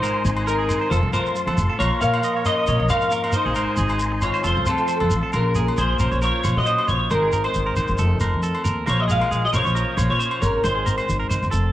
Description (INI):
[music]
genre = highlife guitar band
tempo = 136 BPM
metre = 4/4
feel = swing 53% on 16ths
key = Bb minor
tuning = A4 = 439 Hz
[part]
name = clean electric guitar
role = melody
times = 0.0-11.1 s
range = A4 to F5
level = -23 LUFS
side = equal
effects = ensemble chorus, cassette tape
[part]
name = edgy alto saxophone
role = second line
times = 0.0-11.1 s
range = Db3 to Bb4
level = -30 LUFS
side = left 2 dB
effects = cassette tape
[part]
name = clean electric guitar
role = accompaniment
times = 0.0-11.7 s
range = F2 to A4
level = -31 LUFS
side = left 3 dB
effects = lush chorus, cassette tape
[part]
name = tonewheel organ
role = sustained chords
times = 0.0-5.3 s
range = F5 to Db6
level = -34 LUFS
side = equal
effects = slow rotary speaker, chorus vibrato, cassette tape
[part]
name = clean electric guitar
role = arpeggios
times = 0.0-11.7 s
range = F4 to Eb5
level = -28 LUFS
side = right 4 dB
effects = cassette tape
[part]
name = upright bass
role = bass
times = 0.0-11.7 s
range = F1 to Bb2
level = -23 LUFS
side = equal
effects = none
[part]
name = agogo bells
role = percussion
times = 0.0-11.4 s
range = none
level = -29 LUFS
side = left 2 dB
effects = none
[part]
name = shekere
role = percussion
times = 0.0-11.6 s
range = none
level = -27 LUFS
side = right 1 dB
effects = none
[sound]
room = moderate spring reverb, RT60 2.6 s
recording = home recording on cassette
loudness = -18 LUFS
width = side -13 dB against mid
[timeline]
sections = 0.0-5.3 A section; 5.3-11.7 B section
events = none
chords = 0.0 Abadd9; 0.9 F; 1.8 Bbm; 3.6 Abadd9; 4.4 F; 5.3 Bbm; 7.1 Abadd9; 8.0 F; 8.9 Bbm; 10.6 Abadd9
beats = | 0.03 0.47 0.91 1.35 | 1.79 2.24 2.68 3.12 | 3.56 4.00 4.45 4.89 | 5.33 5.77 6.22 6.66 | 7.10 7.54 7.99 8.43 | 8.87 9.31 9.76 10.20 | 10.64 11.08 11.53